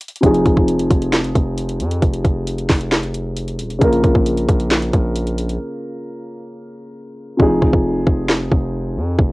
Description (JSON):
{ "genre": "hip hop, trap", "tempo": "134 BPM", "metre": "4/4", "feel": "half-time", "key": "F minor", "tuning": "A4 = 441 Hz", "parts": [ { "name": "trap drum kit", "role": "drums", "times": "0.0-9.3 s", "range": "handclaps, hi-hat, kick drum, snare drum", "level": "-16 LUFS", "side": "equal", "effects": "cassette tape" }, { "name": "dark concert grand piano", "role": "accompaniment", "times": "0.2-9.3 s", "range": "C3 to Bb4", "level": "-20 LUFS", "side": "equal", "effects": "low-pass filter, cassette tape" }, { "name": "distorted 808-style bass", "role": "bass", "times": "0.2-9.3 s", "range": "Eb1 to F2", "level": "-22 LUFS", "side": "equal", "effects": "distortion" } ], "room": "little or no reverb", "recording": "home recording on cassette", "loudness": "-15 LUFS", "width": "side -22 dB against mid", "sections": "0.0-9.3 A section", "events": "break 0.0, 5.6-7.4; filter sweep on grand piano 0.0-7.4; hi-hats muted 7.4-9.3", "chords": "0.2 Fm7; 3.8 Bbm; 7.4 Fm7", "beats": "| 0.23 0.68 1.13 1.58 | 2.02 2.47 2.92 3.37 | 3.81 4.26 4.71 5.16 | 5.61 6.05 6.50 6.95 | 7.40 7.84 8.29 8.74 | 9.19" }